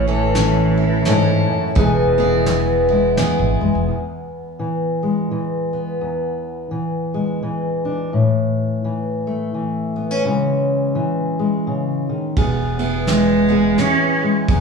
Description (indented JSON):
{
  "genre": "acoustic folk duo or small band",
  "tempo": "85 BPM",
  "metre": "3/4",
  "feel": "swing 60% on 8ths",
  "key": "E major",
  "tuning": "A4 = 441 Hz",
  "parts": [
    { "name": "clear cello", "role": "second line", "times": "0.0-3.6, 13.1-14.2 s", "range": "E3 to C#4", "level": "-19 LUFS", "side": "right 3 dB", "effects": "none" },
    { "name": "fingerpicked steel-string acoustic guitar", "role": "accompaniment", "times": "0.0-14.6 s", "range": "E2 to G#4", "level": "-19 LUFS", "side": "left 2 dB", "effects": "none" },
    { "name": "picked steel-string acoustic guitar", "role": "arpeggios", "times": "0.0-4.0, 12.4-14.6 s", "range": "B3 to A4", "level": "-24 LUFS", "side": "right 3 dB", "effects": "none" },
    { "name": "upright bass", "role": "bass", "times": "0.0-3.9, 12.4-14.6 s", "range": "E1 to A1", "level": "-22 LUFS", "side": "equal", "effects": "none" },
    { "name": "soft brush drum kit", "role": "drums", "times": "0.3-3.4, 12.4-14.6 s", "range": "hi-hat, kick drum, ride cymbal, snare drum", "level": "-23 LUFS", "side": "right 2 dB", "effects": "none" }
  ],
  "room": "moderate large studio reverb, RT60 1.1 s",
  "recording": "heard from further back in the room, studio ambience",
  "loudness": "-16 LUFS",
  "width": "side -5 dB against mid",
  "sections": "0.0-3.9 A section; 3.9-12.4 B section; 12.4-14.6 C section",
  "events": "cello solo 12.4-14.6",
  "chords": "0.0 A; 1.8 E; 8.1 A5; 10.2 C#m; 12.4 E"
}